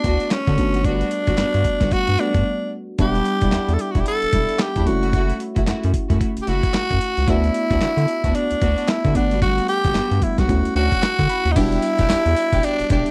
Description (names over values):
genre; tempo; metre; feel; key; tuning
R&B, new jack swing; 112 BPM; 4/4; swing 60% on 16ths; E dorian; A4 = 440 Hz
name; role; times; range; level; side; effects
growling tenor saxophone; melody; 0.0-13.1 s; C#4 to A4; -24 LUFS; equal; slapback echo
mellow FM electric piano; accompaniment; 0.0-13.1 s; G3 to B5; -29 LUFS; equal; chorus
warm studio string section; stabs; 0.0-13.1 s; G3 to G4; -29 LUFS; equal; none
round analog bass; bass; 0.0-13.0 s; E1 to D3; -23 LUFS; equal; none
dusty soul sampler-style drum kit; drums; 0.0-13.1 s; crash cymbal, handclaps, hi-hat, kick drum, snare drum, tambourine; -25 LUFS; equal; overdrive
room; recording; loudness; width
little or no reverb; dry, close 1970s-style studio recording; -19 LUFS; mono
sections
0.0-11.6 A section; 11.6-13.1 B section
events
break 2.5-3.0; FM electric piano fill 10.8-11.6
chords
0.0 D6; 0.6 Gmaj7; 3.0 Em7; 4.9 F#m7; 7.3 D6; 9.2 Gmaj7; 10.5 Dmaj7; 11.6 Em7